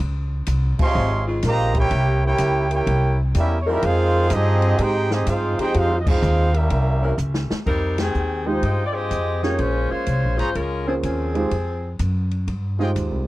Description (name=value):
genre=jazz, big band swing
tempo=125 BPM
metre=4/4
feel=swing 66% on 8ths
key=F minor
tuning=A4 = 439 Hz
part: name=upright bass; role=bass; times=0.0-13.3 s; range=Ab1 to Ab2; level=-21 LUFS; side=equal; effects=none
part: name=open jazz drum kit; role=drums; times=0.0-13.1 s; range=crash cymbal, hi-hat, kick drum, ride cymbal, snare drum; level=-27 LUFS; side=equal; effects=none
part: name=clear trumpet section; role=melody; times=0.8-7.2 s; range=C4 to C6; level=-24 LUFS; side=right 2 dB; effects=tape echo
part: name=muted trombone section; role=second line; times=0.8-7.2 s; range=C3 to G4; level=-23 LUFS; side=right 2 dB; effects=none
part: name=mellow saxophone section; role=sustained chords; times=1.3-7.1 s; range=Db3 to Bb4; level=-26 LUFS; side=left 2 dB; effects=none
part: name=warm saxophone section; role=melody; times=7.7-12.0 s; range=Eb3 to Eb5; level=-24 LUFS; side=left 2 dB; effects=none
part: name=warm concert grand piano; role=accompaniment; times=8.5-13.3 s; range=Ab3 to Db5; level=-24 LUFS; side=right 3 dB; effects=none
part: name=clear trumpet section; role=stabs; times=8.6-12.9 s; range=F4 to Bb5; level=-29 LUFS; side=right 1 dB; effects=none
room=little or no reverb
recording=dry, close 1970s-style studio recording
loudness=-18 LUFS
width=side -18 dB against mid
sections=0.0-7.7 A section; 7.7-13.3 B section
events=band accent 0.7, 6.0, 7.9; drum fill 7.2-7.7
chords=0.0 Dbmaj7; 1.9 C7b9; 3.8 Fm9; 6.7 C7b9; 7.7 Fm9; 9.6 Bbm9; 11.5 Fm9